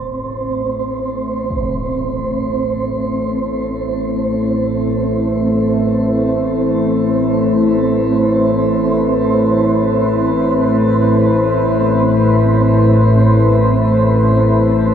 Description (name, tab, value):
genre	dark ambient drone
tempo	free time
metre	none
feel	none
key	A minor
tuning	A4 = 440 Hz
part	deep dark ambient pad	sustained chords	1.1-14.9 s	A3 to C5	-15 LUFS	equal	chorus, built-in reverb, shimmer reverb
part	organ-like drone	drone	0.0-14.9 s	A1 to A2	-18 LUFS	left 1 dB	ensemble chorus, built-in reverb
part	wind-like tuned noise texture	texture	0.0-14.9 s	C4	-20 LUFS	right 3 dB	built-in reverb, shimmer reverb
part	impact	percussion	1.5-1.8 s	none	-30 LUFS	equal	low-pass filter on sfx
room	wet cathedral reverb, RT60 5.6 s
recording	none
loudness	-13 LUFS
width	side -8 dB against mid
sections	0.0-14.9 A section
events	fade-in on synth drone 0.0-14.9; fade-in on impacts and reversed cymbals 0.0-14.9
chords	0.0 Am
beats	free time